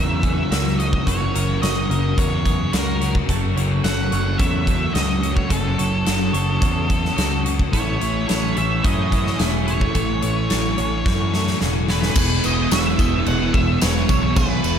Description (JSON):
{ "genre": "rock, shoegaze and dream pop", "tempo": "108 BPM", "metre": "4/4", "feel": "straight", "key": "unclear", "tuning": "A4 = 442 Hz", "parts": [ { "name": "octave-fuzz lead guitar", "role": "melody", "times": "0.0-14.8 s", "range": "A4 to F#5", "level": "-26 LUFS", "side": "equal", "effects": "distortion, digital delay" }, { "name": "glassy FM pad", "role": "sustained chords", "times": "0.0-14.8 s", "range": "G#4 to D#6", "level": "-34 LUFS", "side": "left 2 dB", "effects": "ensemble chorus, built-in reverb" }, { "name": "twelve-string electric guitar", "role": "arpeggios", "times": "0.0-14.8 s", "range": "F#4 to D#5", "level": "-32 LUFS", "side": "right 10 dB", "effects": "analog chorus, digital delay" }, { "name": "overdriven electric guitar", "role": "riff", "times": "0.0-14.8 s", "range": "E2 to G#4", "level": "-27 LUFS", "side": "right 12 dB", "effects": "reverse reverb" }, { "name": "thick fuzz guitar", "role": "riff", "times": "0.0-14.8 s", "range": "E2 to A3", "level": "-25 LUFS", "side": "left 9 dB", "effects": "distortion, ensemble chorus" }, { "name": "growling picked electric bass", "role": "bass", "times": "0.0-14.8 s", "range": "E1 to F#2", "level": "-23 LUFS", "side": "equal", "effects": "overdrive" }, { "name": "huge arena drum kit", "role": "drums", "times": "0.2-14.8 s", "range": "crash cymbal, hi-hat, kick drum, snare drum", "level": "-22 LUFS", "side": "equal", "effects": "none" }, { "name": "tambourine", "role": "percussion", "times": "12.2-14.8 s", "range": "none", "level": "-34 LUFS", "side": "left 9 dB", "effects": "none" } ], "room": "light reverb, small room ambience", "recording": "none", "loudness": "-17 LUFS", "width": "side -8 dB against mid", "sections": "0.0-12.2 A section; 12.2-14.8 B section", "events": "drum fill 11.1-12.2", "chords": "0.0 F#7; 3.3 F#m7; 7.7 Amaj7; 12.2 E6" }